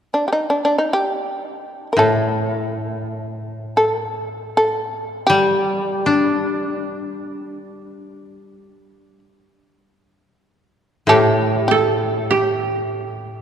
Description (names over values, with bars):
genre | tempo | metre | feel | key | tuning
japanese traditional, Japanese chamber music | free time | none | none | G hirajoshi | A4 = 439 Hz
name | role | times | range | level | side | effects
shamisen | melody | 0.1-12.9 s | D4 to Bb4 | -19 LUFS | equal | none
koto | accompaniment | 2.0-13.4 s | A2 to D4 | -21 LUFS | left 2 dB | none
koto | second line | 11.1-13.4 s | G4 to A4 | -19 LUFS | right 4 dB | none
room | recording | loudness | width
wet church reverb, RT60 3.3 s | dark, warm production, lossy compression artefacts | -17 LUFS | side -8 dB against mid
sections
0.0-11.1 A section; 11.1-13.4 B section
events
none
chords
none